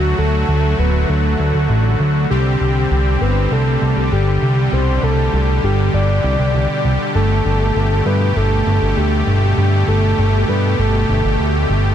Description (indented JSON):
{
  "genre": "synthwave",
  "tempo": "99 BPM",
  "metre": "4/4",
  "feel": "straight",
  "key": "unclear",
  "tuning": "A4 = 440 Hz",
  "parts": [
    { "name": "soft octave-layered synth lead", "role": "melody", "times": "0.0-11.7 s", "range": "F#4 to D5", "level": "-21 LUFS", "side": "equal", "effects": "chorus, ping-pong delay" },
    { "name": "soft supersaw", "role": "sustained chords", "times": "0.0-11.9 s", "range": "B2 to G4", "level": "-19 LUFS", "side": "equal", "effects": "none" },
    { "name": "fat analog bass", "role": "bass", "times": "0.0-11.9 s", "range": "D1 to G2", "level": "-16 LUFS", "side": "equal", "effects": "none" }
  ],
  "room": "light reverb, digital ambience",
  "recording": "dense, heavily limited modern master",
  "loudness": "-13 LUFS",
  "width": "side -10 dB against mid",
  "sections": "0.0-11.9 A section",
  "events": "none",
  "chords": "0.0 D; 2.3 Csus2; 7.2 Gadd9",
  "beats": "0.48 1.09 1.70 | 2.30 2.91 3.51 4.12 | 4.73 5.33 5.94 6.54 | 7.15 7.76 8.36 8.97 | 9.57 10.18 10.79 11.39"
}